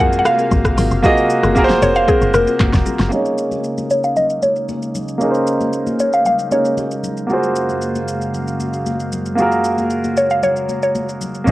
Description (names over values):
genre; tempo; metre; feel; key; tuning
amapiano; 115 BPM; 4/4; straight; unclear; A4 = 440 Hz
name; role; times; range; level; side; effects
mallet-like synth pluck; melody; 0.0-7.0, 10.2-11.2 s; Ab4 to Gb5; -16 LUFS; equal; chorus, low-pass filter, cassette tape, tape echo
clear grand piano; accompaniment; 0.0-11.5 s; Bb3 to Eb5; -18 LUFS; right 1 dB; low-pass filter, cassette tape
warm analog pad; sustained chords; 0.0-11.5 s; Gb2 to F5; -26 LUFS; equal; chorus, sidechain pumping, low-pass filter, cassette tape
buzzing marimba with medium mallets; stabs; 0.0-3.0 s; C4 to Bb4; -24 LUFS; left 4 dB; cassette tape, tape echo
woody log drum bass; bass; 0.0-3.1 s; F1 to Gb2; -19 LUFS; equal; none
deep house drum kit; drums; 0.1-11.5 s; handclaps, hi-hat, kick drum, rim click, shaker, snare drum; -21 LUFS; equal; none
congas; percussion; 0.3-11.5 s; none; -27 LUFS; left 3 dB; none
fingered electric bass; bass; 11.5 s; Bb1; -12 LUFS; equal; none
room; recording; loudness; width
little or no reverb; home recording on cassette; -14 LUFS; side -17 dB against mid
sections
0.0-3.1 A section; 3.1-11.5 B section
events
drop 0.0-3.1; filter sweep 3.1-11.5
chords
0.0 Gbmaj9#11; 3.1 Bbm11; 7.3 Gbmaj9#11